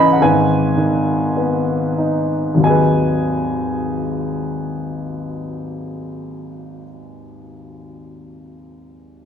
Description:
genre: acoustic folk-pop ballad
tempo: 47 BPM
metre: 4/4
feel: straight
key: G# minor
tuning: A4 = 439 Hz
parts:
  - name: dark upright piano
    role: solo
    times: 0.0-9.3 s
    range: G#1 to B5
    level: -17 LUFS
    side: equal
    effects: none
room: moderate scoring stage reverb, RT60 1.9 s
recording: close, detailed microphones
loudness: -16 LUFS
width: side -8 dB against mid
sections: 0.0-2.6 A section; 2.6-7.7 B section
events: slowing down 0.0-2.6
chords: 0.2 G#m; 2.6 G#m7

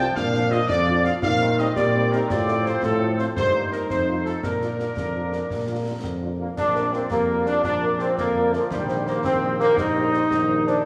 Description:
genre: military-style march for wind band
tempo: 112 BPM (dotted quarters)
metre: 6/8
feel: straight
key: Bb major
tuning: A4 = 441 Hz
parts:
  - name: warm trumpet section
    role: melody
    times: 0.0-10.7 s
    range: A4 to F5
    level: -32 LUFS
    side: equal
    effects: none
  - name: dark euphonium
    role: second line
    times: 0.0-10.9 s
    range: D3 to G4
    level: -34 LUFS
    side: equal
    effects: none
  - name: warm woodwind section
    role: second line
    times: 0.0-10.8 s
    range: F4 to G5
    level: -31 LUFS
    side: equal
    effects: none
  - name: mellow French horn section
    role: accompaniment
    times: 0.0-10.7 s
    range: F3 to C5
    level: -34 LUFS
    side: equal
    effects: none
  - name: bright trombone section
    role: sustained chords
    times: 0.0-10.8 s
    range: Eb3 to Eb4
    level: -27 LUFS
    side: equal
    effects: none
  - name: mellow tuba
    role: bass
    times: 0.0-10.8 s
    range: Bb1 to Bb2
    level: -28 LUFS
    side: equal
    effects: none
  - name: concert snare drum, concert bass drum and clash cymbals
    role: drums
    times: 0.2-10.8 s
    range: none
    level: -36 LUFS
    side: equal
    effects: none
  - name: mellow hollow small flute group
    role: second line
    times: 6.4-10.8 s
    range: F4 to Eb5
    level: -32 LUFS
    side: equal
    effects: none
room: wet concert hall reverb, RT60 2.3 s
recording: studio ambience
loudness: -22 LUFS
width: mono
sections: 0.0-6.6 A section; 6.6-10.9 A section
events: none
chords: 0.2 Bb; 1.2 Cm7/Bb; 2.3 F/A; 3.4 Eb/G; 3.9 F7; 4.4 Bb; 8.7 Cm7/Bb

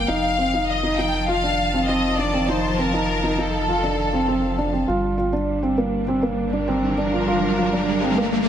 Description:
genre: piano and strings electronica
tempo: 100 BPM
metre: 4/4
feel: straight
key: G minor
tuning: A4 = 441 Hz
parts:
  - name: rich studio violin section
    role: melody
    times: 0.0-4.6 s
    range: A4 to G5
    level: -23 LUFS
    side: left 2 dB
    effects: tape echo
  - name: rich studio string section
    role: sustained chords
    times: 0.0-8.5 s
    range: Eb3 to A5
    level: -26 LUFS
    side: equal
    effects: low-pass filter
  - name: felt-muted upright piano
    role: riff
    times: 0.0-8.4 s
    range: Bb3 to F4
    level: -22 LUFS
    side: right 1 dB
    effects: tape echo
  - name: round analog bass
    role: bass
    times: 0.0-8.5 s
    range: F1 to G1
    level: -29 LUFS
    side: equal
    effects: none
  - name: riser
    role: sound effects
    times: 6.1-8.5 s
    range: none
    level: -26 LUFS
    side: equal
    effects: none
room: moderate echo chamber reverb, RT60 2.5 s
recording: none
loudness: -19 LUFS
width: side -9 dB against mid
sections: 0.0-4.9 A section; 4.9-8.5 B section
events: build-up 4.9-8.5; filter sweep on string section 4.9-8.5; filter sweep 4.9-8.5; riser 6.1-8.5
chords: 0.1 F7; 4.9 Gm7

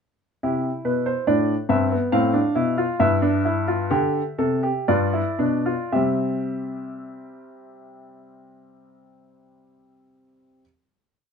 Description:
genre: classical, baroque-style 3-part fugue for grand piano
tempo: 56-72 BPM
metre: 3/4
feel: straight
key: C major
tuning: A4 = 440 Hz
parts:
  - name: warm baby grand piano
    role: solo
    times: 0.4-10.6 s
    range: G2 to F5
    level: -20 LUFS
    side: equal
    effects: none
room: light reverb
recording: dark, warm production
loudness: -20 LUFS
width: side -6 dB against mid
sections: 0.4-5.9 exposition; 5.9-9.2 final chord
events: slowing down 0.4-7.5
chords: 0.4 C; 2.1 F/A; 3.0 C/G; 4.9 G7; 5.9 C

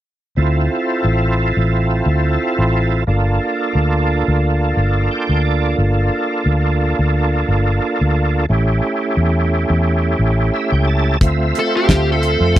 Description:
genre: straight-eighth soul blues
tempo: 88 BPM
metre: 4/4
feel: swing 55% on 16ths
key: D minor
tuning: A4 = 440 Hz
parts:
  - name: overdriven tonewheel organ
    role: accompaniment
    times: 0.4-12.6 s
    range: A3 to A5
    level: -18 LUFS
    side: right 2 dB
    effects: slow rotary speaker, chorus vibrato
  - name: vintage muted fingered electric bass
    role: bass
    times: 0.4-12.6 s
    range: G1 to F2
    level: -16 LUFS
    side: equal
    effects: none
  - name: damped 70s drum kit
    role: drums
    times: 11.2-12.6 s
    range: hi-hat, kick drum, snare drum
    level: -13 LUFS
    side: equal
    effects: none
  - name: biting lead guitar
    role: melody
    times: 11.6-12.6 s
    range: G4 to A4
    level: -18 LUFS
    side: left 1 dB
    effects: overdrive
room: little or no reverb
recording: dry, close 1970s-style studio recording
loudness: -14 LUFS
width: side -13 dB against mid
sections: 0.4-11.2 A section; 11.2-12.6 B section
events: tonewheel organ fill 4.8-5.8, 10.2-11.2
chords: 0.4 Dm7; 3.1 Gm7; 8.5 A7; 11.2 Dm7

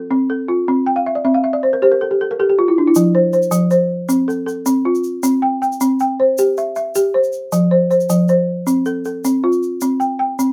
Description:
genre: west african traditional, West African string and xylophone music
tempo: 105 BPM (dotted quarters)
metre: 12/8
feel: straight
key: F major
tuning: A4 = 443 Hz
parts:
  - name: balafon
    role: arpeggios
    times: 0.0-10.5 s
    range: F3 to G5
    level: -16 LUFS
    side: equal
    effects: none
  - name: tube shaker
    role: percussion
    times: 3.0-10.5 s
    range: none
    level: -32 LUFS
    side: equal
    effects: none
room: light reverb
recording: none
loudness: -16 LUFS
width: mono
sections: 0.0-3.0 A section; 3.0-10.5 B section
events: balafon fill 0.9-3.0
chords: 0.0 F; 0.7 C5; 3.0 F; 5.2 C; 7.5 F; 9.8 C5

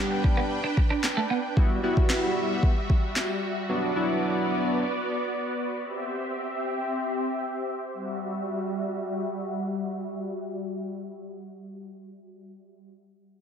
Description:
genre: dance-pop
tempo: 113 BPM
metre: 4/4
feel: straight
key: E minor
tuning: A4 = 438 Hz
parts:
  - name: chorused polysynth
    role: accompaniment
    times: 0.0-4.8 s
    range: F#3 to G4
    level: -28 LUFS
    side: equal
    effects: sidechain pumping, low-pass filter
  - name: supersaw pad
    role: sustained chords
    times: 0.0-12.8 s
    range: G3 to G5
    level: -30 LUFS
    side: equal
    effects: wide subtle chorus, sidechain pumping, low-pass filter
  - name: twelve-string electric guitar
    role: riff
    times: 0.0-1.4 s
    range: A3 to D4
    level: -30 LUFS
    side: right 5 dB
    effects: lush chorus, low-pass filter
  - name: smooth R&B drum kit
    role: drums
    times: 0.2-3.3 s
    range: handclaps, kick drum, snare drum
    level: -24 LUFS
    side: equal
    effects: overdrive
room: moderate plate reverb, RT60 1.8 s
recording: dreamy mix soaked in reverb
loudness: -25 LUFS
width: side -8 dB against mid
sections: 0.0-7.9 A section; 7.9-12.2 B section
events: filter sweep 0.0-7.9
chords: 0.0 G; 1.6 Emadd9; 3.7 Bm; 5.8 C; 7.9 Emadd9

